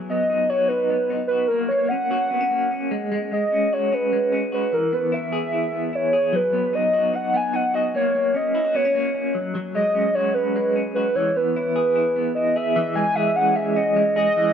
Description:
indie pop; 149 BPM; 4/4; straight; A4 = 440 Hz
electric guitar through a small old amp; arpeggios; 0.0-14.5 s; E3 to G#4; -24 LUFS; equal; tremolo, analog delay
warbly nostalgic lead; melody; 0.1-14.5 s; A#4 to G#5; -20 LUFS; equal; chorus, tremolo, analog delay
moderate echo chamber reverb, RT60 2.0 s; echo-heavy mix; -19 LUFS; side -8 dB against mid
0.0-12.8 A section; 12.8-14.5 B section
0.0 B; 1.5 F#; 2.9 C#sus4; 4.7 E; 6.3 B; 7.9 F#; 9.3 C#sus4; 11.2 E; 12.8 C#m
0.30 0.71 1.11 | 1.51 1.91 2.32 2.72 | 3.12 3.52 3.92 4.33 | 4.73 5.13 5.53 5.93 | 6.33 6.74 7.14 7.54 | 7.94 8.34 8.74 9.14 | 9.55 9.95 10.35 10.75 | 11.15 11.55 11.96 12.36 | 12.76 13.16 13.56 13.96 | 14.36

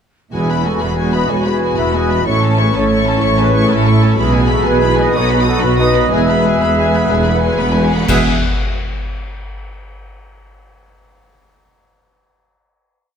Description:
cinematic, heroic adventure film score; 124 BPM (dotted quarters); 12/8; straight; E major; A4 = 439 Hz
warm symphonic violin section; melody; 0.3-8.3 s; E5 to D#6; -22 LUFS; left 5 dB
bright clarinet; second line; 0.3-8.2 s; E4 to G#4; -26 LUFS; left 3 dB
dark cor anglais; second line; 0.3-8.2 s; B4 to G#5; -25 LUFS; right 3 dB
small flute group; second line; 0.3-8.3 s; E4 to E5; -24 LUFS; left 3 dB
warm symphonic violin section; second line; 0.3-8.3 s; D#4 to B4; -27 LUFS; left 3 dB
rich studio viola section; accompaniment; 0.3-8.3 s; G#3 to D#4; -23 LUFS; right 1 dB
dark trombone section; sustained chords; 0.3-8.2 s; A2 to G#3; -25 LUFS; right 4 dB
mellow French horn section; sustained chords; 0.3-8.2 s; A3 to B4; -23 LUFS; left 5 dB
dark trumpet section; stabs; 0.3-8.2 s; G#4 to E5; -20 LUFS; equal
dark symphonic cello section; bass; 0.3-8.3 s; E2 to B2; -20 LUFS; right 2 dB
rich symphonic double bass section; bass; 0.3-8.3 s; E1 to B1; -18 LUFS; right 2 dB
cymbal swell, clash cymbals and concert bass drum; percussion; 4.2-8.7 s; -22 LUFS; left 1 dB
moderate scoring stage reverb, RT60 1.7 s; -12 LUFS; side -7 dB against mid
0.3-8.1 theme; 8.1-10.0 final chord
band accent 8.1-8.4
0.3 Eadd9; 2.3 A; 4.2 E/B; 5.1 B; 6.1 E
| 0.33 0.81 1.29 1.78 | 2.26 2.74 3.22 3.70 | 4.18 4.66 5.14 5.63 | 6.12 6.62 7.11 7.60 | 8.09 8.58

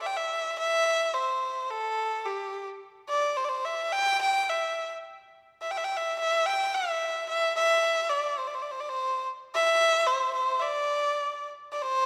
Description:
chinese traditional; 107 BPM; 2/4; straight; C gong mode; A4 = 440 Hz
clear erhu; solo; 0.0-12.1 s; G4 to G5; -28 LUFS; equal
moderate scoring stage reverb, RT60 2.0 s; -28 LUFS; mono
0.6-9.5 A section; 9.5-12.1 B section
0.00 | 0.57 1.14 | 1.69 2.25 | 2.81 3.36 | 3.92 4.49 | 5.05 5.62 | 6.18 6.74 | 7.29 7.85 | 8.41 8.97 | 9.55 10.12 | 10.68 11.24 | 11.79

